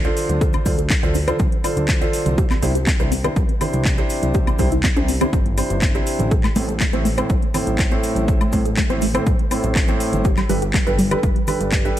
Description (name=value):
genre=progressive house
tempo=122 BPM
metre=4/4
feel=straight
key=D dorian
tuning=A4 = 440 Hz
part: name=wide unison pluck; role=arpeggios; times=0.0-12.0 s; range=G3 to C5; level=-25 LUFS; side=equal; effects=sidechain pumping, digital delay
part: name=felt-muted upright piano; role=stabs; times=0.0-12.0 s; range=A2 to C5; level=-24 LUFS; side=right 1 dB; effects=sidechain pumping, digital delay
part: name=fat analog bass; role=bass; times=0.0-11.9 s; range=G1 to D2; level=-23 LUFS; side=equal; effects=sidechain pumping
part: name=house drum kit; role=drums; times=0.0-12.0 s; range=handclaps, hi-hat, woodblock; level=-26 LUFS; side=left 2 dB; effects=overdrive, sidechain pumping on hats, sidechain pumping on cymbals, sidechain pumping on perc
part: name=cabasa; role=percussion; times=0.0-12.0 s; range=none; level=-38 LUFS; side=left 4 dB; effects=none
part: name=congas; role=percussion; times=0.3-11.7 s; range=none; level=-30 LUFS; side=right 4 dB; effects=none
part: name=electronic kick drum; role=drums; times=0.4-11.8 s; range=none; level=-19 LUFS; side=equal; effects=overdrive
room=light reverb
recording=dark, warm production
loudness=-16 LUFS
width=side -12 dB against mid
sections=0.0-12.0 A section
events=filter sweep on synth pluck 0.0-12.0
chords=0.0 Dm7; 2.4 Cadd9; 6.3 Am; 10.2 Gadd9